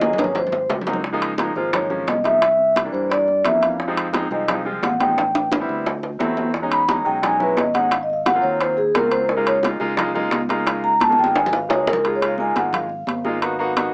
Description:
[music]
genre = Afro-Cuban jazz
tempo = 174 BPM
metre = 4/4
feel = straight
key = Db major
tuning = A4 = 437 Hz
[part]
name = vibraphone with medium mallets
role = melody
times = 0.0-13.7 s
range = Ab4 to B5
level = -18 LUFS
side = equal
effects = cassette tape
[part]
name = clear baby grand piano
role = accompaniment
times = 0.0-13.9 s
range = E3 to Ab4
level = -24 LUFS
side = equal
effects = cassette tape
[part]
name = fingered electric bass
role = bass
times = 0.0-13.9 s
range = Ab1 to G2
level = -32 LUFS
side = equal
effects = none
[part]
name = bongos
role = percussion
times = 0.0-12.0 s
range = none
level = -27 LUFS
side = equal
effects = none
[part]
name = congas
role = percussion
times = 0.0-13.9 s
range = none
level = -28 LUFS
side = equal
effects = none
[part]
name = timbales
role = percussion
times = 0.0-13.9 s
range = none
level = -24 LUFS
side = equal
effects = none
[sound]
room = moderate small room reverb, RT60 0.5 s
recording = home recording on cassette, small speaker sound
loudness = -17 LUFS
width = side -36 dB against mid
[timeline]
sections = 0.0-1.0 A section; 1.0-12.0 B section; 12.0-13.9 B section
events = drum fill 0.0-1.0, 5.2-6.5, 11.0-12.0; vibraphone solo 1.0-13.9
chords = 0.4 Ab7; 1.0 Db69; 2.4 C7; 3.8 Fm7; 5.2 Am7; 5.9 D9; 6.5 Emaj13; 7.9 Ab13; 9.3 Db69; 13.4 Abm7

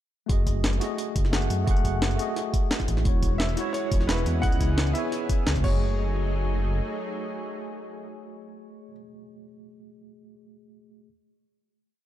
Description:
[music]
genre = liquid drum and bass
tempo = 174 BPM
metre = 4/4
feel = straight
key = F# dorian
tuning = A4 = 440 Hz
[part]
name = tine electric piano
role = accompaniment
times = 0.3-11.1 s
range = G#3 to F#5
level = -32 LUFS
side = equal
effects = overdrive, medium stereo tremolo, ping-pong delay
[part]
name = dark detuned saw bass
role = bass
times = 0.3-6.8 s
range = E1 to F#2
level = -26 LUFS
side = equal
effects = none
[part]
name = electronic kick drum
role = drums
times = 0.3-5.7 s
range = none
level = -25 LUFS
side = equal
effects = none
[part]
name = jungle sampler-style drum kit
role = drums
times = 0.3-5.7 s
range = crash cymbal, hi-hat, snare drum, tambourine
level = -30 LUFS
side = equal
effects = overdrive
[part]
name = lush unison pad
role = sustained chords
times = 3.1-8.9 s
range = E3 to G#4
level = -36 LUFS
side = left 1 dB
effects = chorus, sidechain pumping
[part]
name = bright baby grand piano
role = melody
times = 3.4-8.9 s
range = B4 to F#5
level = -36 LUFS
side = right 1 dB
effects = tape echo
[sound]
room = little or no reverb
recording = dark, warm production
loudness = -23 LUFS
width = side -12 dB against mid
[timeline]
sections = 0.3-5.8 drop; 5.8-8.6 final hit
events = drop 0.3-5.8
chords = 0.3 F#m69; 3.1 E69; 4.4 C#m7; 5.6 F#m69

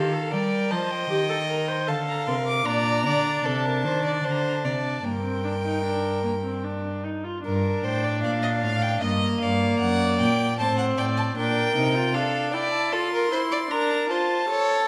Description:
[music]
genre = classical, baroque-style fugue for string quartet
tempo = 76 BPM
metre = 3/4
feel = straight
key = G minor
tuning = A4 = 440 Hz
[part]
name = warm violin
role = melody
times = 0.0-14.9 s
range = D5 to D6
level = -31 LUFS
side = equal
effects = none
[part]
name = warm violin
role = second line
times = 0.0-14.9 s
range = A4 to F5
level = -30 LUFS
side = equal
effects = none
[part]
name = rich viola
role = accompaniment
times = 0.0-14.9 s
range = Bb3 to C5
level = -30 LUFS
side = equal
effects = none
[part]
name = dark cello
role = bass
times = 0.0-12.1 s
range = F#2 to G3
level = -30 LUFS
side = equal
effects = none
[sound]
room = wet recital hall reverb, RT60 1.3 s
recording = none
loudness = -24 LUFS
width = mono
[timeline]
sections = 0.0-7.4 A section; 7.4-14.9 B section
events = none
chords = 0.3 Cm; 1.9 Bb/D; 2.7 Bb; 3.4 Adim/C; 4.2 D5; 5.0 Gm; 9.0 Eb/G; 9.8 D/F#; 11.4 Gm/Bb; 12.1 Dm; 13.7 Bb/D

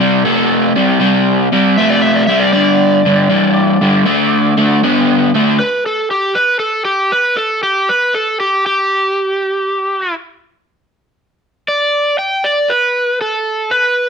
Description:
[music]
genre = rock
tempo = 79 BPM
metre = 4/4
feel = swing 68% on 8ths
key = unclear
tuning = A4 = 437 Hz
[part]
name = crunchy overdriven guitar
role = riff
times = 0.0-5.6 s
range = G2 to B3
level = -10 LUFS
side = left 1 dB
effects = spring reverb
[part]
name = overdriven slide guitar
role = melody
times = 1.8-14.1 s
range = G4 to G5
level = -14 LUFS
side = right 1 dB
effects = none
[sound]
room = moderate studio reverb, RT60 0.8 s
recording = none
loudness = -11 LUFS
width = side -6 dB against mid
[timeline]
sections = 0.0-5.6 A section; 5.6-14.1 B section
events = electric slide guitar solo 5.6-14.1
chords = 0.0 C5; 2.5 G5; 4.1 D5; 5.6 N.C.

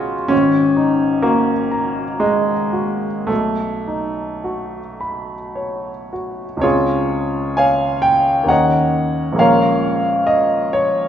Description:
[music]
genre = classical, impressionist solo piano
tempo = 52-70 BPM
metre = 3/4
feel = rubato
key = unclear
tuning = A4 = 440 Hz
[part]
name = clear baby grand piano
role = solo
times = 0.0-11.1 s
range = Ab1 to Cb6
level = -15 LUFS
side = equal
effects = none
[sound]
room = wet recital hall reverb, RT60 1.7 s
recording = heard from further back in the room, nothing above 7.9 kHz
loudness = -15 LUFS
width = side -9 dB against mid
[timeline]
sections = 0.0-6.6 A section; 6.6-11.1 B section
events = none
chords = 0.3 Ab9sus4; 3.3 Cb9; 6.6 Dbmaj7; 8.5 Ebm7; 9.4 Bbm7

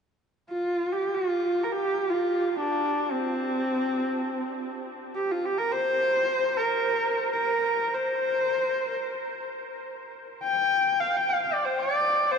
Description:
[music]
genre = mongolian traditional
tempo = free time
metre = none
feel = none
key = unclear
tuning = A4 = 441 Hz
[part]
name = clear horsehead fiddle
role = solo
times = 0.5-12.4 s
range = C4 to G5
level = -24 LUFS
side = equal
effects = none
[sound]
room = wet huge ambient reverb, RT60 9.7 s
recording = in a vast, echoing space, nothing above 10.6 kHz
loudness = -24 LUFS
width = side -6 dB against mid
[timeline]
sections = 0.2-12.4 A section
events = none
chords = none

